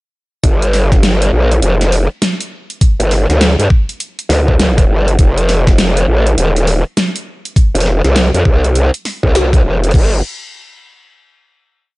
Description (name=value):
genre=glitch hop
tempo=101 BPM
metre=4/4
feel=swing 63% on 16ths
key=G minor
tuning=A4 = 439 Hz
part: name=growl bass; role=bass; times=0.4-10.2 s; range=Eb1 to G2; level=-11 LUFS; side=equal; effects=chorus, overdrive
part: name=dubstep drum kit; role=drums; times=0.4-10.1 s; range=crash cymbal, hi-hat, snare drum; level=-18 LUFS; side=equal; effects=studio ambience
part: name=electronic kick drum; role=drums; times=0.4-10.1 s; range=none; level=-10 LUFS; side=equal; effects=studio ambience
room=little or no reverb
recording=nothing above 10.4 kHz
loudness=-10 LUFS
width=side -22 dB against mid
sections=0.4-9.9 drop; 9.9-12.0 final note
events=drop 0.4-9.9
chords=none